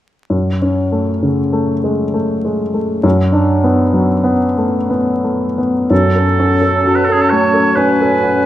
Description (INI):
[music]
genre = classical, romantic movement for piano and orchestra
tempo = 57-68 BPM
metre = 3/4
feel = rubato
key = F# minor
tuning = A4 = 444 Hz
[part]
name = warm baby grand piano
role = melody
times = 0.3-8.5 s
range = F#2 to A4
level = -13 LUFS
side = left 1 dB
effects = none
[part]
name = warm clarinet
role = second line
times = 5.9-8.5 s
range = C#4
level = -20 LUFS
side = left 2 dB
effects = none
[part]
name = warm oboe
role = second line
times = 5.9-8.5 s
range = G#4 to C#5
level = -15 LUFS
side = right 3 dB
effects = none
[part]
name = mellow bassoon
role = accompaniment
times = 5.9-8.5 s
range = F#3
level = -20 LUFS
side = right 4 dB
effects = none
[part]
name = bright silver concert flute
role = second line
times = 6.8-8.5 s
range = G#5 to A5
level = -20 LUFS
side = right 1 dB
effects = none
[sound]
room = moderate scoring stage reverb, RT60 2.0 s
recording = dark, warm production, vinyl crackle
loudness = -12 LUFS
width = side -13 dB against mid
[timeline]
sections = 0.3-5.9 A section; 5.9-8.5 B section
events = none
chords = 0.3 F#m; 3.0 Bm/F#; 5.9 F#m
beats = | 0.31 1.22 2.14 | 3.04 3.94 4.90 | 5.91 6.85 7.77